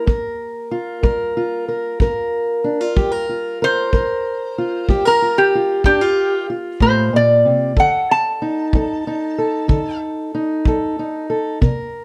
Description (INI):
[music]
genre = acoustic country blues, solo or duo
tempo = 62 BPM (dotted quarters)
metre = 12/8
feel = straight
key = G minor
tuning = A4 = 442 Hz
[part]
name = fingerpicked steel-string acoustic guitar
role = accompaniment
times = 0.0-12.0 s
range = G2 to Bb4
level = -22 LUFS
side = equal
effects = none
[part]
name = kick drum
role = drums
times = 0.1-11.8 s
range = none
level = -20 LUFS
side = equal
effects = none
[part]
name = lap resonator guitar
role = melody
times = 3.6-10.0 s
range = G4 to A5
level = -18 LUFS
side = equal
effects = none
[sound]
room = moderate studio reverb, RT60 0.5 s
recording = none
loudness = -18 LUFS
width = mono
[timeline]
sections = 0.0-12.0 A section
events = resonator guitar played with a steel bar solo 0.0-12.0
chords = 0.1 Gm7; 7.8 D